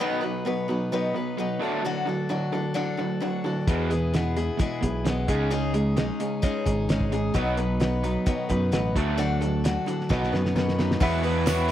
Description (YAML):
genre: folk rock and heartland rock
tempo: 131 BPM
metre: 4/4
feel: straight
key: E major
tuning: A4 = 440 Hz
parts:
  - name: picked acoustic archtop guitar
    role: accompaniment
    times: 0.0-11.7 s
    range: B2 to B4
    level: -28 LUFS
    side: left 3 dB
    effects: none
  - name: raw garage guitar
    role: riff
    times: 0.0-11.7 s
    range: E2 to F#4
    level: -28 LUFS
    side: right 2 dB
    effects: overdrive, spring reverb
  - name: picked electric bass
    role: bass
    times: 3.7-11.7 s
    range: G#1 to F#2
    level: -27 LUFS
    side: equal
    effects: none
  - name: cloth-damped thuddy drum kit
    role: drums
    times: 3.7-11.7 s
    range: hi-hat, kick drum, snare drum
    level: -27 LUFS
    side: equal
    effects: none
  - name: bright upright piano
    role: accompaniment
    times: 11.0-11.7 s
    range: E4 to E5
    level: -33 LUFS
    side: right 3 dB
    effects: none
  - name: tambourine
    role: percussion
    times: 11.5-11.6 s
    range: none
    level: -39 LUFS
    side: right 13 dB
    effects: none
room: studio reverb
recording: dry, close 1970s-style studio recording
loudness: -23 LUFS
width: side -12 dB against mid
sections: 0.0-11.0 A section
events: drum fill 10.1-11.0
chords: 0.0 B; 1.6 D; 3.7 E; 5.3 C#sus2; 7.4 B; 9.0 D; 10.1 B; 11.0 Esus2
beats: | 0.00 0.46 0.92 1.38 | 1.84 2.30 2.76 3.22 | 3.68 4.14 4.60 5.06 | 5.52 5.98 6.44 6.89 | 7.35 7.81 8.27 8.73 | 9.19 9.64 10.10 10.55 | 11.01 11.46